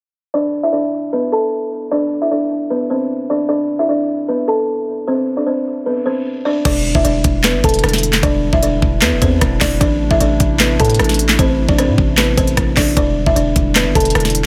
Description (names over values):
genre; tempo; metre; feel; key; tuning
hip hop, trap; 152 BPM; 4/4; half-time; unclear; A4 = 440 Hz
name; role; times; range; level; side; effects
buzzing kalimba; melody; 0.3-14.5 s; B3 to A5; -19 LUFS; equal; digital delay
hollow soft pad; sustained chords; 6.7-14.5 s; C3 to E4; -27 LUFS; equal; chorus
distorted 808-style bass; bass; 6.7-14.5 s; E1 to A2; -20 LUFS; equal; distortion
trap drum kit; drums; 6.7-14.4 s; crash cymbal, handclaps, hi-hat, kick drum, rim click, snare drum; -18 LUFS; equal; overdrive
room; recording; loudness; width
digital ambience; low-pass filter; -16 LUFS; mono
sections
0.3-6.7 A section; 6.7-14.5 B section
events
filter sweep 0.3-6.7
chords
0.3 Am; 6.7 Em7; 9.8 Am; 13.0 Em7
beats
| 0.34 0.73 1.13 1.52 | 1.92 2.31 2.70 3.10 | 3.49 3.89 4.28 4.68 | 5.07 5.47 5.86 6.26 | 6.65 7.05 7.44 7.84 | 8.23 8.63 9.02 9.41 | 9.81 10.20 10.60 10.99 | 11.39 11.78 12.18 12.57 | 12.97 13.36 13.76 14.15